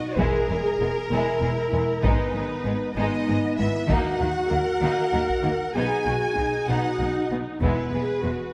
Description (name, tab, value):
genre	cinematic, epic orchestral film score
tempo	64 BPM (dotted quarters)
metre	6/8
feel	straight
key	unclear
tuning	A4 = 438 Hz
part	rich symphonic violin section	melody	0.0-8.5 s	Bb4 to Ab5	-32 LUFS	equal	none
part	rich symphonic viola section	accompaniment	0.0-8.5 s	Cb4 to Bb4	-32 LUFS	equal	none
part	mellow French horn section	sustained chords	0.0-8.5 s	Cb4 to Bb4	-31 LUFS	equal	none
part	rich symphonic violin section	second line	0.2-8.3 s	G#3 to E4	-34 LUFS	equal	none
part	rich symphonic cello section	bass	0.2-8.3 s	E2 to Eb3	-33 LUFS	equal	none
part	warm symphonic double bass section	bass	0.2-8.3 s	E1 to Eb2	-32 LUFS	equal	none
part	taiko ensemble	drums	0.2-8.5 s	none	-30 LUFS	equal	none
room	wet concert hall reverb, RT60 2.4 s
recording	none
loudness	-24 LUFS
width	mono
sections	0.0-8.5 A section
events	none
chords	0.2 E; 2.0 Abm; 3.9 Ebm; 5.7 B; 7.6 E